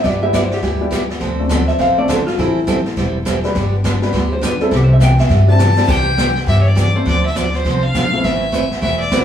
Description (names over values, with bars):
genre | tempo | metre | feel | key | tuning
country, western swing | 205 BPM | 4/4 | swing 62% on 8ths | C major | A4 = 440 Hz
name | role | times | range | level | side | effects
vintage hollow-body jazz guitar | second line | 0.0-5.5 s | E4 to G5 | -19 LUFS | equal | none
picked steel-string acoustic guitar | accompaniment | 0.0-9.2 s | C3 to B4 | -21 LUFS | right 3 dB | none
warm upright piano | accompaniment | 0.0-8.2 s | G3 to B4 | -22 LUFS | left 3 dB | none
upright bass | bass | 0.0-9.2 s | E1 to G2 | -17 LUFS | equal | none
jazz brush drum kit | drums | 0.0-9.2 s | brushed snare drum, crash cymbal, hi-hat, kick drum, snare drum | -22 LUFS | left 1 dB | none
clear fiddle | melody | 5.5-9.2 s | C5 to A5 | -19 LUFS | left 1 dB | none
room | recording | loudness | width
wet large studio reverb, RT60 0.9 s | band playing live in one room | -13 LUFS | side -9 dB against mid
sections
0.0-5.9 A section; 5.9-9.2 B section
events
hollow-body jazz guitar solo 0.0-5.9; drum fill 5.6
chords
0.0 G6; 1.2 Dm7; 2.4 Am7; 3.6 G; 4.7 Cadd9; 7.1 Dm7; 8.2 Amadd9